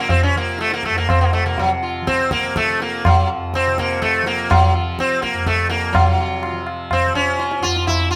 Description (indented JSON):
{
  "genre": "indian classical, Hindustani",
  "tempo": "124 BPM",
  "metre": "4/4",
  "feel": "straight",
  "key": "F raga bhairav",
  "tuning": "A4 = 440 Hz",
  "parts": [
    { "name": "sitar", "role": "melody", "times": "0.0-8.2 s", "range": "Gb3 to F4", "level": "-20 LUFS", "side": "equal", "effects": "none" },
    { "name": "tanpura", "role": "drone", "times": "0.0-8.2 s", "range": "F2 to F3", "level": "-28 LUFS", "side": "equal", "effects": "none" },
    { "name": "tabla", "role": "percussion", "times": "0.1-8.0 s", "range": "none", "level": "-22 LUFS", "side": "equal", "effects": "none" }
  ],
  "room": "wet stone room reverb, RT60 1.1 s",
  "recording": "band playing live in one room",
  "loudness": "-18 LUFS",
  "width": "mono",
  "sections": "0.0-6.0 A section; 6.0-8.2 B section",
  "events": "speeding up 0.0-8.2",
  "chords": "none"
}